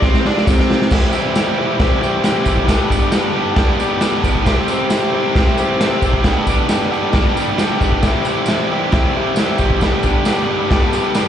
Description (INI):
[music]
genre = garage rock duo or trio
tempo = 135 BPM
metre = 4/4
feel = straight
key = unclear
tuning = A4 = 440 Hz
[part]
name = overdriven combo organ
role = sustained chords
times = 0.0-11.3 s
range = G4 to E5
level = -24 LUFS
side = left 1 dB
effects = spring reverb
[part]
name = biting overdriven guitar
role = riff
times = 0.0-11.3 s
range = G2 to G4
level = -17 LUFS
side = equal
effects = slapback echo
[part]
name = raw garage drum kit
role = drums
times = 0.0-11.3 s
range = crash cymbal, kick drum, snare drum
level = -17 LUFS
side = equal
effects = none
[part]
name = tambourine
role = percussion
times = 0.5-11.3 s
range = none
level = -35 LUFS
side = right 1 dB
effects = none
[sound]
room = light reverb, studio ambience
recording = live gig heard through the venue's PA, club reverb, nothing above 10.8 kHz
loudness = -13 LUFS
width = side -9 dB against mid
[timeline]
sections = 0.9-11.3 A section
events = drum fill 0.0-0.9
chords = 0.0 G; 0.9 C; 2.7 G; 4.5 C; 6.2 G; 8.0 C; 9.8 G